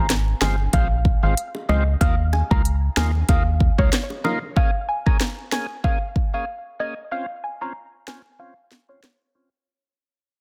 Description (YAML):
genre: dancehall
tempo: 94 BPM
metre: 4/4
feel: swing 56% on 16ths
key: Bb dorian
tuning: A4 = 440 Hz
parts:
  - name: soft round pluck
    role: melody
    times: 0.0-9.0 s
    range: Db5 to Bb5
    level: -31 LUFS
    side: equal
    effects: chorus, low-pass filter, delay
  - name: overdriven tonewheel organ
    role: accompaniment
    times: 0.0-9.5 s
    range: Ab3 to Ab4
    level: -32 LUFS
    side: equal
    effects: slow rotary speaker, sidechain pumping, low-pass filter
  - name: organ-like FM bass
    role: bass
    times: 0.0-3.9 s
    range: G1 to Eb2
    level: -23 LUFS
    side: equal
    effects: none
  - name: afro-pop drum kit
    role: drums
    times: 0.1-9.2 s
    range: hi-hat, kick drum, rim click, snare drum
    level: -22 LUFS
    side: equal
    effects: none
  - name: bongos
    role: percussion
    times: 0.4-4.4 s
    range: none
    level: -35 LUFS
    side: equal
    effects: none
room: digital ambience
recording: dense, heavily limited modern master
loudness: -21 LUFS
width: mono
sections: 0.0-4.6 A section; 4.6-9.7 B section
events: fade-out 4.6-9.7; filter sweep 4.6-9.7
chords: 0.0 Ab6; 2.0 Ebsus2; 4.6 Bbm7; 7.1 Dbmaj7